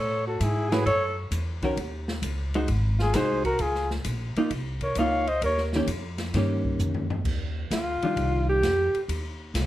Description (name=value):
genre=jazz, small-group swing and bop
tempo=131 BPM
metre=4/4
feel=swing 68% on 8ths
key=unclear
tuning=A4 = 440 Hz
part: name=warm flugelhorn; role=melody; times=0.0-5.6 s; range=Ab4 to F5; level=-27 LUFS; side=left 1 dB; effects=plate reverb
part: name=clear alto saxophone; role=second line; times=0.0-9.1 s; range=E4 to Db5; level=-28 LUFS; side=right 1 dB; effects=none
part: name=upright bass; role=bass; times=0.0-9.7 s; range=Ab1 to A2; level=-28 LUFS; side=equal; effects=none
part: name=open jazz drum kit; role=drums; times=0.4-9.7 s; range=crash cymbal, hi-hat, kick drum, ride cymbal, snare drum, toms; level=-34 LUFS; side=left 1 dB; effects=none
part: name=vintage hollow-body jazz guitar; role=accompaniment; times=0.7-8.6 s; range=Eb3 to C#5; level=-27 LUFS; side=equal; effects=none
room=moderate studio reverb, RT60 0.8 s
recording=lossy compression artefacts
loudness=-24 LUFS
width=side -14 dB against mid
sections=0.0-7.3 A section; 7.3-9.7 B section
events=drum fill 6.8-7.3; alto saxophone solo 7.3-9.7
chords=0.0 A6; 1.8 Ebm7; 2.7 Ab7; 3.6 Db69; 5.4 Eb7; 7.3 Ebmaj9; 9.1 Eb5